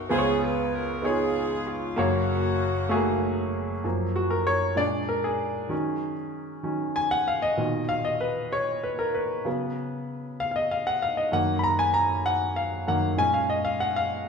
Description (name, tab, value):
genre	gospel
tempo	64 BPM (dotted quarters)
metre	6/8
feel	straight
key	F# major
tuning	A4 = 438 Hz
part	warm saxophone section	melody	0.0-3.5 s	A#3 to B4	-29 LUFS	right 1 dB	none
part	clear concert grand piano	accompaniment	0.0-14.3 s	F#1 to B5	-24 LUFS	equal	none
room	wet large studio reverb, RT60 1.3 s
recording	band playing live in one room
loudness	-24 LUFS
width	side -5 dB against mid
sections	0.0-3.8 A section; 3.8-14.3 B section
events	grand piano solo 3.8-14.3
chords	0.1 C#7; 2.0 F#maj7; 4.8 A#7; 5.7 D#m7; 7.6 Bmaj7; 9.5 C#7sus4; 11.3 F#6; 13.2 A#m7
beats	| 0.10 1.04 | 1.98 2.91 | 3.85 4.78 | 5.72 6.66 | 7.59 8.53 | 9.46 10.39 | 11.33 12.26 | 13.19 14.12